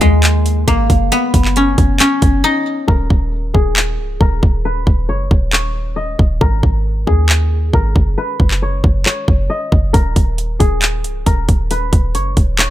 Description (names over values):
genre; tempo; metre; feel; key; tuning
hip hop, trap; 136 BPM; 4/4; half-time; Eb minor; A4 = 441 Hz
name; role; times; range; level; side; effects
guzheng; melody; 0.0-12.7 s; Ab3 to Eb5; -19 LUFS; left 2 dB; low-pass filter, digital delay
clean 808-style bass; bass; 0.0-12.7 s; Db1 to Eb2; -16 LUFS; equal; none
trap drum kit; drums; 0.0-12.7 s; handclaps, hi-hat, kick drum; -14 LUFS; equal; none
room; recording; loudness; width
little or no reverb; none; -12 LUFS; side -14 dB against mid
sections
0.0-2.9 A section; 2.9-12.7 B section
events
break 2.4-2.9, 2.9-9.9; filter sweep on guzheng 2.9-12.7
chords
0.0 Absus2; 1.1 Gb5; 2.9 Eb7(no3); 6.4 Absus2; 8.2 Gb5; 9.9 Eb7(no3)